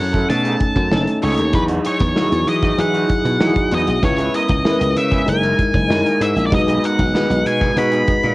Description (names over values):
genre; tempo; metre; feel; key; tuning
polished 1980s jazz-funk pop; 96 BPM; 4/4; straight; unclear; A4 = 437 Hz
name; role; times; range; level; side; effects
octave-fuzz lead guitar; melody; 0.0-8.3 s; B4 to B5; -21 LUFS; equal; distortion, cassette tape
mellow tine electric piano; accompaniment; 0.0-8.3 s; F#3 to B4; -19 LUFS; equal; fast stereo tremolo, lush chorus, cassette tape
electric guitar through a small old amp; riff; 0.0-8.3 s; E3 to A#4; -28 LUFS; right 2 dB; lush chorus, cassette tape
glassy slap bass; bass; 0.0-8.3 s; F#1 to E3; -21 LUFS; equal; none
modern studio drum kit; drums; 0.1-8.3 s; hi-hat, kick drum, snare drum; -21 LUFS; equal; cassette tape
room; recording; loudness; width
light reverb; home recording on cassette; -14 LUFS; side -19 dB against mid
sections
0.0-8.3 A section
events
none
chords
0.3 B13; 1.5 Emaj9; 4.0 C#m7; 5.3 F#13; 6.5 B6